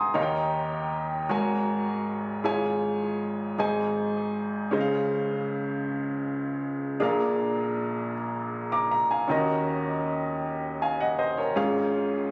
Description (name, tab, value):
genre	gospel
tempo	53 BPM (dotted quarters)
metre	6/8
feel	straight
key	Db major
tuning	A4 = 441 Hz
part	clear baby grand piano	solo	0.0-12.3 s	Ab1 to Eb6	-27 LUFS	equal	tape echo
room	light reverb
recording	recorded on a phone in the room, club reverb, compression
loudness	-28 LUFS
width	mono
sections	0.0-12.3 A section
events	none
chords	0.2 Eb7; 1.3 Ab9sus4; 2.4 Db/Ab; 3.6 Ab; 4.7 Dbmaj7; 7.0 Bb7; 9.3 Ebm7; 11.6 Db/Ab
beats	| 0.15 1.30 | 2.44 3.58 | 4.72 5.86 | 7.00 8.15 | 9.29 10.43 | 11.57